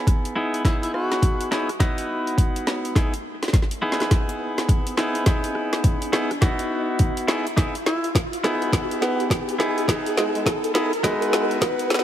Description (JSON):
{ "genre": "glitch hop", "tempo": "104 BPM", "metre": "4/4", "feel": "swing 62% on 16ths", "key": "unclear", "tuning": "A4 = 444 Hz", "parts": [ { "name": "clean electric guitar", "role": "stabs", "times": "0.0-12.0 s", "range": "B3 to G#4", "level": "-25 LUFS", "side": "equal", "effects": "vintage 12-bit sampler grit, sidechain pumping, low-pass filter, tape echo" }, { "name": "riser", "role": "sound effects", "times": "0.9-12.0 s", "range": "none", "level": "-30 LUFS", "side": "equal", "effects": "none" }, { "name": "drum and bass drum kit", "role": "drums", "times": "0.1-12.0 s", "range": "hi-hat, rim click, snare drum", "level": "-26 LUFS", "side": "equal", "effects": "overdrive" }, { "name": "electronic kick drum", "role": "drums", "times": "0.1-11.8 s", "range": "none", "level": "-20 LUFS", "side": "equal", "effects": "overdrive" }, { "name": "breathy tenor saxophone", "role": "melody", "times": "0.6-1.5, 7.9-11.6 s", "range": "G#3 to F#4", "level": "-28 LUFS", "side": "left 1 dB", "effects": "tape echo" } ], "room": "light reverb", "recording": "high-pass filter", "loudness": "-20 LUFS", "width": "side -11 dB against mid", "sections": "0.0-12.0 A section", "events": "build-up 0.0-12.0; drum fill 0.0-12.0; riser 0.9-12.0", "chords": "0.0 Emaj9/B" }